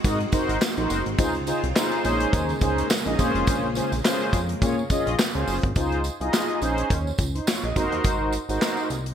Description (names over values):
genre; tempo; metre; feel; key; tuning
early-eighties boogie funk; 105 BPM; 4/4; swing 56% on 16ths; Bb minor; A4 = 440 Hz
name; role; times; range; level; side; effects
mellow synth brass; accompaniment; 0.0-8.9 s; Db4 to Eb5; -25 LUFS; equal; chorus
string machine, violins; sustained chords; 0.0-5.7 s; Db3 to Gb4; -32 LUFS; equal; ensemble chorus
chorused synth bass; bass; 0.0-9.1 s; F1 to Bb2; -28 LUFS; equal; none
modern studio drum kit; drums; 0.0-9.1 s; handclaps, hi-hat, kick drum, snare drum; -25 LUFS; equal; gated reverb
tambourine; percussion; 0.0-9.1 s; none; -36 LUFS; right 8 dB; none
room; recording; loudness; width
light reverb, studio reverb; bright 1980s-style digital production; -21 LUFS; side -9 dB against mid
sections
0.0-5.8 A section; 5.8-9.1 B section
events
none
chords
0.0 Ab7; 1.2 Dbmaj7; 2.0 Bbm11; 3.2 Bbm7; 5.8 Dbmaj7; 6.6 Bbm11; 7.8 Ab7